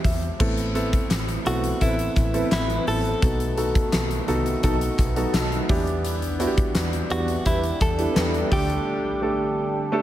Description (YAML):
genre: 1980s-style pop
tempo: 85 BPM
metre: 4/4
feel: straight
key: unclear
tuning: A4 = 440 Hz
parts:
  - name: warm baby grand piano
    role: accompaniment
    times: 0.0-10.0 s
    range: A2 to A5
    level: -26 LUFS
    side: right 1 dB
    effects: none
  - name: vintage muted fingered electric bass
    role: bass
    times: 0.0-8.8 s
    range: A1 to E2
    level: -28 LUFS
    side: equal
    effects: none
  - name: huge arena drum kit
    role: drums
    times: 0.0-8.9 s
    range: crash cymbal, hi-hat, kick drum, snare drum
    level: -25 LUFS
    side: equal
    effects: none
  - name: sweeping resonant pad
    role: sustained chords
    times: 1.1-10.0 s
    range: D3 to B4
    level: -32 LUFS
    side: equal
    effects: chorus, phaser
  - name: group handclap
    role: percussion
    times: 1.1-8.3 s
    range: none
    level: -42 LUFS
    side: left 3 dB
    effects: none
  - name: direct-recorded clean electric guitar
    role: melody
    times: 1.5-10.0 s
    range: E4 to A4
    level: -27 LUFS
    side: equal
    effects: none
  - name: mellow synth brass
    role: stabs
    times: 1.8-8.5 s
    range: E3 to B4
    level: -32 LUFS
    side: equal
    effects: chorus
room: light reverb, small room ambience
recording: none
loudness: -20 LUFS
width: side -13 dB against mid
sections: 0.4-10.0 A section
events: grand piano fill 0.0-0.4; break 8.9-10.0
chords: 0.4 Amadd9; 3.2 B7; 5.7 Em7; 8.5 Dsus4